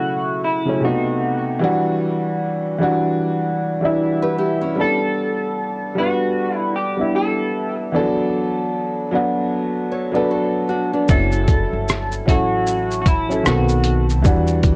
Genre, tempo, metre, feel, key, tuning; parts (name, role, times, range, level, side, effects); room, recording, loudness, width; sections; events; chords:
lo-fi hip hop; 76 BPM; 4/4; swing 60% on 16ths; E dorian; A4 = 435 Hz
electric guitar through a small old amp; melody; 0.0-14.1 s; E4 to A4; -26 LUFS; equal; analog chorus, tape echo
dark upright piano; accompaniment; 0.0-14.8 s; C3 to B4; -22 LUFS; equal; cassette tape
nylon-string guitar; second line; 4.2-5.0, 9.9-11.3 s; B3 to C#5; -27 LUFS; equal; tape echo
upright bass; bass; 11.1-14.8 s; F#1 to E2; -23 LUFS; equal; transformer saturation
lo-fi sampler-style drum kit; drums; 11.1-14.8 s; hi-hat, kick drum, rim click, shaker; -20 LUFS; equal
moderate studio reverb, RT60 0.5 s; worn, warbling old tape, cassette tape, warbly pitch drift; -19 LUFS; mono
0.0-14.8 A section
0.0 F#m7; 0.8 B7b9; 1.6 Em9; 4.8 A9sus4; 7.9 D6; 11.1 F#m7; 13.5 B7b9; 14.2 Em9